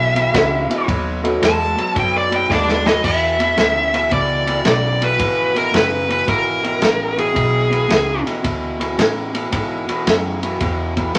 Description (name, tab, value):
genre	electric blues shuffle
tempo	111 BPM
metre	4/4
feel	swing 67% on 8ths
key	E mixolydian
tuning	A4 = 440 Hz
part	dark smooth lead guitar	melody	0.0-11.2 s	G#4 to A5	-20 LUFS	equal	overdrive
part	electric guitar through a small old amp	riff	0.0-11.2 s	E2 to G#3	-25 LUFS	equal	none
part	vintage muted fingered electric bass	bass	0.0-11.2 s	F#1 to A2	-27 LUFS	equal	none
part	vintage drum kit	drums	0.2-11.2 s	crash cymbal, kick drum, ride cymbal, snare drum	-23 LUFS	equal	none
part	warm upright piano	accompaniment	0.3-1.4 s	G#3 to F#4	-26 LUFS	equal	none
room	moderate studio reverb, RT60 0.6 s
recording	none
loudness	-18 LUFS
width	mono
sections	0.0-3.0 A section; 3.0-11.2 B section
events	lead electric guitar solo 0.0-3.0; drum fill 2.5-3.0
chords	0.0 E7; 0.9 B7; 3.0 E7